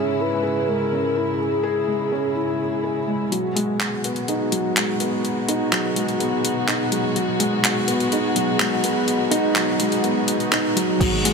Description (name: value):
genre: piano and strings electronica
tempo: 125 BPM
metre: 4/4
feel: straight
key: G# minor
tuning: A4 = 439 Hz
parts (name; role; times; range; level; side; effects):
- warm velvety synth lead; melody; 0.0-3.1 s; G#4 to B4; -26 LUFS; right 1 dB; chorus, ping-pong delay, shimmer reverb
- warm chamber string section; sustained chords; 0.0-11.3 s; G#2 to F#4; -26 LUFS; equal; sidechain pumping, low-pass filter, shimmer reverb
- felt-muted upright piano; riff; 0.0-11.3 s; F#3 to G#4; -22 LUFS; equal; ping-pong delay, shimmer reverb
- dark detuned saw bass; bass; 3.3-11.3 s; none; barely audible; none; none
- deep house drum kit; drums; 3.3-11.3 s; crash cymbal, handclaps, hi-hat; -24 LUFS; equal; overdrive
- electronic kick drum; drums; 11.0-11.1 s; none; -23 LUFS; right 1 dB; overdrive
room: moderate huge ambient reverb, RT60 6.8 s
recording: none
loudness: -19 LUFS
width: side -4 dB against mid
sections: 0.0-3.3 A section; 3.3-11.0 B section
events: build-up 3.3-11.0; filter sweep on string section 3.3-11.0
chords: 0.0 C#m/G#; 3.3 G#m7